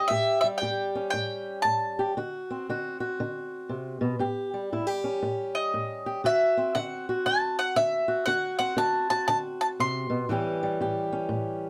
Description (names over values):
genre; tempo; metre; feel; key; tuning
acoustic country blues, solo or duo; 118 BPM; 4/4; swing 64% on 8ths; unclear; A4 = 441 Hz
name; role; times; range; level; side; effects
bowl-back mandolin; melody; 0.0-2.1, 5.5-10.3 s; D#5 to C6; -28 LUFS; equal; none
fingerpicked swing-style acoustic guitar; accompaniment; 0.0-11.7 s; A2 to G4; -32 LUFS; equal; none
room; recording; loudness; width
moderate small room reverb, RT60 0.5 s; none; -28 LUFS; mono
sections
0.0-11.7 A section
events
none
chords
0.0 A7; 2.2 D7; 4.2 A7; 6.2 D7; 10.3 A7